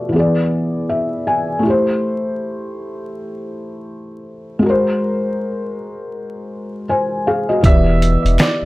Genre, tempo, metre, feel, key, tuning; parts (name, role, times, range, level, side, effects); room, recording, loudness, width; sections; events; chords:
lo-fi hip hop; 80 BPM; 4/4; swing 58% on 16ths; A4 = 440 Hz
felt-muted upright piano; accompaniment; 0.0-8.7 s; B2 to G#5; -18 LUFS; left 1 dB; cassette tape, low-pass filter
soft dub sub bass; bass; 7.6-8.7 s; D1 to E1; -15 LUFS; equal
lo-fi sampler-style drum kit; drums; 7.6-8.6 s; finger snaps, hi-hat, kick drum, snare drum; -13 LUFS; equal
clear upright piano; melody; 7.7-8.7 s; D5 to E5; -20 LUFS; right 3 dB; low-pass filter, analog delay
finger snaps; percussion; 8.4-8.6 s; barely audible
moderate studio reverb, RT60 0.6 s; vinyl crackle; -15 LUFS; side -19 dB against mid
0.0-7.6 A section; 7.6-8.7 B section
felt piano fill 0.5-1.6
0.1 E7; 1.6 Am7; 4.6 G#9; 7.6 Em7